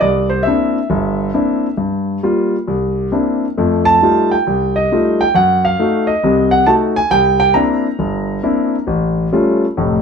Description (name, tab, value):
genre	solo jazz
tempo	136 BPM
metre	4/4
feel	swing 67% on 8ths, rubato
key	C mixolydian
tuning	A4 = 440 Hz
part	warm concert grand piano	solo	0.0-10.0 s	E#1 to Bb5	-13 LUFS	equal	none
room	moderate studio reverb, RT60 0.7 s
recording	band playing live in one room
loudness	-13 LUFS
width	side -6 dB against mid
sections	0.0-10.0 A section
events	none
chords	0.0 C9; 1.8 Gm7; 2.7 C9; 3.6 F9; 5.4 F#dim7; 7.1 C9; 8.9 Aaug7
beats	| 0.03 0.47 0.91 1.35 | 1.79 2.24 2.68 3.13 | 3.58 4.03 4.48 4.92 | 5.36 5.80 6.24 6.67 | 7.11 7.55 7.99 8.44 | 8.88 9.32 9.77